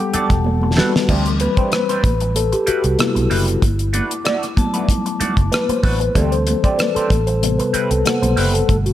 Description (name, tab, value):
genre	lush 1970s-style soul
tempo	95 BPM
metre	4/4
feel	swing 54% on 16ths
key	G major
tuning	A4 = 440 Hz
part	mellow tine electric piano	accompaniment	0.0-8.9 s	B2 to F#5	-19 LUFS	left 2 dB	medium stereo tremolo
part	electric guitar through a small old amp	riff	0.0-8.6 s	G3 to D5	-26 LUFS	right 4 dB	wah
part	vintage muted fingered electric bass	bass	0.1-8.9 s	E1 to D2	-19 LUFS	equal	none
part	damped 70s drum kit	drums	0.1-8.9 s	crash cymbal, hi-hat, kick drum, rim click, snare drum	-19 LUFS	equal	none
part	congas	percussion	0.1-8.8 s	none	-27 LUFS	right 3 dB	none
part	vibraphone with hard mallets	texture	0.1-8.9 s	F#5 to D6	-30 LUFS	left 3 dB	none
room	light reverb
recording	none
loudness	-15 LUFS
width	side -12 dB against mid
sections	0.0-1.1 A section; 1.1-8.9 B section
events	drum fill 0.5-1.1; tine electric piano solo 1.1-8.9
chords	0.0 Gmaj9; 1.1 D7sus4; 2.0 Am9; 3.6 Gmaj9; 6.2 D7sus4; 7.1 Am9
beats	0.45 | 1.08 1.72 2.35 2.99 | 3.62 4.25 4.89 5.52 | 6.15 6.79 7.42 8.05 | 8.69